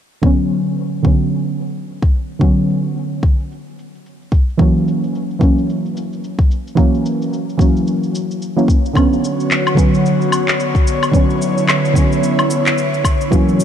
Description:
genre	organic downtempo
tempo	110 BPM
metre	4/4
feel	swing 58% on 16ths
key	B harmonic minor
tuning	A4 = 440 Hz
part	deep mellow chord stab	accompaniment	0.2-13.6 s	D3 to C#4	-17 LUFS	right 1 dB	chorus, sidechain pumping, ping-pong delay
part	electronic cabasa, woodblock and handclaps	drums	0.2-13.6 s	none	-20 LUFS	left 2 dB	low-pass filter on perc, low-pass filter on snare
part	electronic kick drum	drums	0.2-13.4 s	none	-14 LUFS	equal	none
part	airy breathy pad	sustained chords	9.0-13.6 s	B2 to C#5	-18 LUFS	equal	chorus, phaser, sidechain pumping
room	moderate huge ambient reverb, RT60 4.0 s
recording	dark, warm production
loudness	-13 LUFS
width	side -9 dB against mid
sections	0.2-13.6 A section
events	none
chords	0.2 Bmadd9; 4.6 F#7; 9.0 Bmadd9

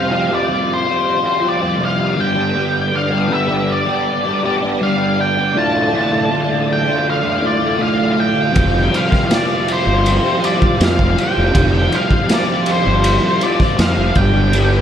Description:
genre	psychedelic rock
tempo	80 BPM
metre	4/4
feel	straight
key	unclear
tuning	A4 = 439 Hz
part	octave-fuzz lead guitar	melody	0.0-14.8 s	C5 to A5	-19 LUFS	left 2 dB	distortion, tape echo
part	dark studio string section	sustained chords	0.0-14.8 s	F4 to F5	-26 LUFS	right 3 dB	none
part	overdriven semi-hollow guitar	riff	0.0-14.8 s	D2 to G4	-17 LUFS	equal	rotary speaker
part	fuzz fingered electric bass	bass	8.6-14.8 s	F1 to F2	-17 LUFS	equal	overdrive
part	raw garage drum kit	drums	8.6-14.7 s	kick drum, ride cymbal, snare drum	-18 LUFS	equal	none
room	light reverb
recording	none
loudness	-13 LUFS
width	side -9 dB against mid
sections	0.0-14.8 A section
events	none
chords	0.0 Fsus2; 2.2 G; 5.6 Dm; 8.6 Fsus2; 14.2 G

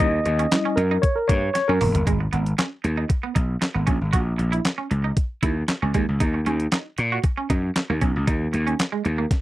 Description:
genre	early-eighties boogie funk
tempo	116 BPM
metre	4/4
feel	straight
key	G# minor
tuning	A4 = 438 Hz
part	tine electric piano	accompaniment	0.0-2.0 s	G3 to D#5	-22 LUFS	left 1 dB	medium stereo tremolo
part	electric guitar at the edge of break-up	riff	0.0-9.3 s	G#3 to F#4	-29 LUFS	right 6 dB	wide subtle chorus
part	gritty slap bass	bass	0.0-9.2 s	E1 to A#2	-22 LUFS	equal	overdrive
part	crisp 8-bit digital drum machine	drums	0.0-9.4 s	handclaps, hi-hat, kick drum, snare drum, toms	-22 LUFS	equal	overdrive
room	little or no reverb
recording	dry, close 1970s-style studio recording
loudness	-20 LUFS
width	side -16 dB against mid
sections	0.0-2.1 A section; 2.1-9.4 B section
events	tine electric piano solo 0.0-2.1; drum fill 1.6-2.1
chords	0.0 D#7b9; 2.1 G#m; 3.9 A#dim; 5.9 D#7(no3)

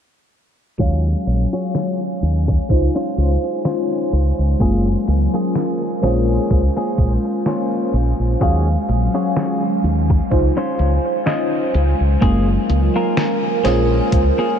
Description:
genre	vaporwave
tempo	63 BPM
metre	4/4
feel	swing 55% on 16ths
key	unclear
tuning	A4 = 440 Hz
part	FM electric piano with soft pad layer	accompaniment	0.8-14.6 s	Gb3 to F5	-21 LUFS	left 1 dB	phaser, wide subtle chorus, analog delay
part	warbly tape-like pad	sustained chords	1.2-14.6 s	Gb3 to Ab5	-24 LUFS	right 1 dB	chorus, built-in reverb
part	clean electric guitar	riff	0.8-14.6 s	Bb3 to Eb5	-25 LUFS	left 2 dB	wide subtle chorus, vintage 12-bit sampler grit, low-pass filter, analog delay
part	fingered electric bass with an envelope filter	bass	0.8-14.3 s	Gb1 to Eb2	-17 LUFS	equal	none
part	detuned 8-bit digital drum machine	drums	0.8-14.3 s	hi-hat, snare drum	-29 LUFS	equal	low-pass filter on hats, low-pass filter on snare
part	electronic kick drum	drums	0.8-14.3 s	none	-18 LUFS	equal	none
room	moderate huge ambient reverb, RT60 7.8 s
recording	dreamy mix soaked in reverb, low-pass filter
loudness	-15 LUFS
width	side -8 dB against mid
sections	0.8-14.6 A section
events	filter sweep on drum 0.8-14.6; filter sweep on clean electric guitar 0.8-14.6; filter sweep 0.8-14.6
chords	0.8 Ebm11; 2.7 Dbmaj7; 4.6 Gbmaj9; 6.0 Bbm7; 8.4 Ebm11; 10.3 Dbmaj7; 12.2 Gbmaj9; 13.7 Bbm7

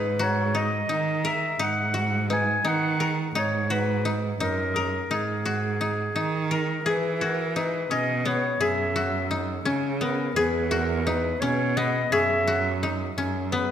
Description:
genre	contemporary instrumental, chamber music in an uneven meter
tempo	171 BPM (eighths)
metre	5/8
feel	straight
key	G# minor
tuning	A4 = 444 Hz
part	clear clarinet	melody	0.0-13.7 s	G#4 to G#5	-28 LUFS	left 1 dB	none
part	koto	arpeggios	0.0-13.7 s	B3 to A#4	-27 LUFS	left 3 dB	none
part	clear cello	bass	0.0-13.7 s	E2 to E3	-28 LUFS	right 3 dB	none
part	worn celesta	texture	0.2-13.6 s	B4 to G#6	-36 LUFS	left 4 dB	none
room	moderate concert hall reverb, RT60 2.1 s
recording	none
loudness	-23 LUFS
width	side -9 dB against mid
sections	0.0-6.9 A section; 6.9-13.7 B section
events	none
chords	0.0 G#m7; 3.4 Bmaj7/G#; 5.1 G#sus2; 6.9 E69; 8.6 F#sus2; 10.4 E69; 12.1 F#sus2

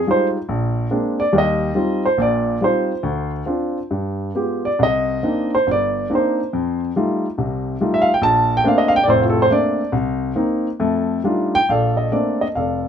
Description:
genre	solo jazz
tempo	140 BPM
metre	4/4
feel	swing 66% on 8ths, rubato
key	Bb major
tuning	A4 = 440 Hz
part	warm baby grand piano	solo	0.0-12.9 s	F1 to A5	-16 LUFS	equal	none
room	light reverb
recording	none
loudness	-16 LUFS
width	side -8 dB against mid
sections	0.0-11.7 A section; 11.7-12.9 B section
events	grand piano solo 0.0-11.7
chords	0.5 Bb9; 1.3 Eb69; 3.0 Dm7; 3.9 G7b9; 4.8 Cm9; 6.5 F9; 8.2 Bbmaj9; 9.9 Cm7; 10.8 F13; 11.7 Bbmaj9

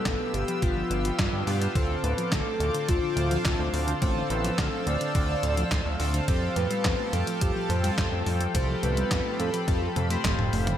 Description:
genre	synthwave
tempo	106 BPM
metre	4/4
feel	straight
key	unclear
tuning	A4 = 441 Hz
part	soft octave-layered synth lead	melody	0.0-10.5 s	F4 to D5	-32 LUFS	left 1 dB	chorus, phaser, cassette tape, tape echo
part	chorused pulse-width pad	sustained chords	0.0-10.8 s	A4 to E6	-33 LUFS	right 1 dB	sidechain pumping
part	thumb-piano-like synth pluck	arpeggios	0.0-10.8 s	A2 to D4	-34 LUFS	equal	chorus, cassette tape, digital delay
part	chorused polysynth	stabs	0.0-10.8 s	B3 to C5	-34 LUFS	left 1 dB	digital delay
part	fat analog bass	bass	0.1-10.7 s	F1 to G2	-28 LUFS	equal	sidechain pumping
part	detuned 8-bit digital drum machine	drums	0.1-10.8 s	handclaps, hi-hat, snare drum, toms	-31 LUFS	equal	gated reverb
part	electronic kick drum	drums	0.1-10.4 s	none	-28 LUFS	equal	none
room	light reverb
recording	none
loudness	-24 LUFS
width	side -10 dB against mid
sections	0.0-10.8 A section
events	drum fill 10.0-10.8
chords	0.0 G7; 1.8 Dm7; 6.3 Fadd9

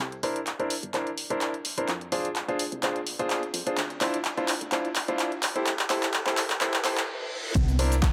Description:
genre	piano house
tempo	127 BPM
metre	4/4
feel	swing 54% on 16ths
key	C mixolydian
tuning	A4 = 440 Hz
part	solid FM bass	bass	0.0-8.1 s	E1 to F2	-33 LUFS	equal	sidechain pumping, high-pass filter
part	punchy analog drum machine	drums	0.0-8.1 s	handclaps, hi-hat, shaker	-31 LUFS	equal	high-pass filter on hats, high-pass filter on perc, high-pass filter on snare, high-pass filter on room
part	riser, reverse cymbal and downlifter	sound effects	2.3-8.1 s	none	-41 LUFS	equal	none
part	bright concert grand piano	riff	0.2-7.9 s	D4 to C5	-32 LUFS	equal	sidechain pumping, low-pass filter, tape echo
part	electronic kick drum	drums	7.6-8.1 s	none	-25 LUFS	equal	none
part	natural country drum kit	drums	7.6-8.1 s	hi-hat, shaker, snare drum	-49 LUFS	equal	none
room	moderate plate reverb, RT60 1.6 s, studio ambience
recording	high-pass filter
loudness	-28 LUFS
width	mono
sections	0.0-7.6 A section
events	build-up 0.0-7.6; drum fill 0.0-7.1; reverse cymbal 6.6-7.6; stop 7.1-7.6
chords	0.0 C9; 1.9 Fm6; 3.8 Dm9; 5.4 Am7; 7.6 C9

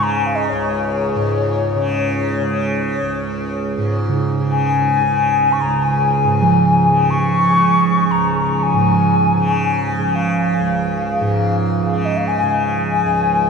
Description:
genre	world meditative, free-time meditation music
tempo	free time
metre	none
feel	none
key	Db major pentatonic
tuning	A4 = 440 Hz
part	mellow alto ocarina	melody	0.0-13.5 s	Db5 to Db6	-18 LUFS	left 4 dB	none
part	tanpura	drone	0.0-13.5 s	Db2 to Db3	-20 LUFS	right 1 dB	stereo widening
part	quartz singing bowl	texture	4.1-13.5 s	Db3 to F3	-19 LUFS	right 5 dB	none
room	wet huge ambient reverb, RT60 7.1 s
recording	in a vast, echoing space, cassette tape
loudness	-14 LUFS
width	side -5 dB against mid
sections	0.0-3.8 A section; 3.8-13.5 A section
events	none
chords	none

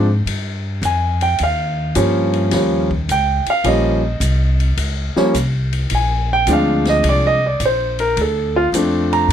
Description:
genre	jazz piano trio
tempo	106 BPM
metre	4/4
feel	swing 68% on 8ths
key	unclear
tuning	A4 = 440 Hz
part	warm baby grand piano	melody	0.0-9.3 s	F3 to Bb5	-16 LUFS	right 1 dB	none
part	upright bass	bass	0.0-9.3 s	Bb1 to Ab2	-19 LUFS	equal	none
part	open jazz drum kit	drums	0.3-9.3 s	hi-hat, kick drum, ride cymbal, snare drum	-27 LUFS	left 4 dB	none
room	little or no reverb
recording	close, detailed microphones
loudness	-15 LUFS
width	side -9 dB against mid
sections	0.0-9.3 A section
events	grand piano solo 0.0-9.3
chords	0.0 Bb7(no3) (rootless); 1.4 Eb9; 5.9 Bb9; 8.2 Dm7

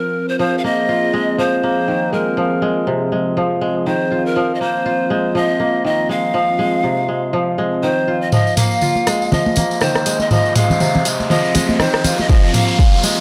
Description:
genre	afro house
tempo	121 BPM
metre	4/4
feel	swing 57% on 16ths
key	F minor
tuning	A4 = 441 Hz
part	breathy bright pan flute	melody	0.0-13.0 s	Bb4 to F5	-23 LUFS	equal	analog delay
part	warm analog pad	sustained chords	0.0-13.2 s	F3 to C5	-27 LUFS	equal	chorus, sidechain pumping
part	kora	arpeggios	0.4-13.2 s	C3 to F4	-21 LUFS	equal	sidechain pumping
part	afro-pop drum kit	drums	8.3-13.2 s	hi-hat, rim click, toms	-21 LUFS	equal	none
part	tambourine	percussion	8.3-13.2 s	none	-28 LUFS	equal	none
part	riser	sound effects	9.5-13.2 s	none	-28 LUFS	equal	none
part	congas	percussion	8.6-13.0 s	none	-22 LUFS	equal	none
part	electronic kick drum	drums	12.3-12.9 s	none	-14 LUFS	equal	none
room	light reverb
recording	dry, gritty hardware recording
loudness	-17 LUFS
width	mono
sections	0.0-8.3 A section; 8.3-13.2 B section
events	build-up 8.3-13.2; drum fill 8.3-13.2; riser 9.5-13.2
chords	0.0 Fm7

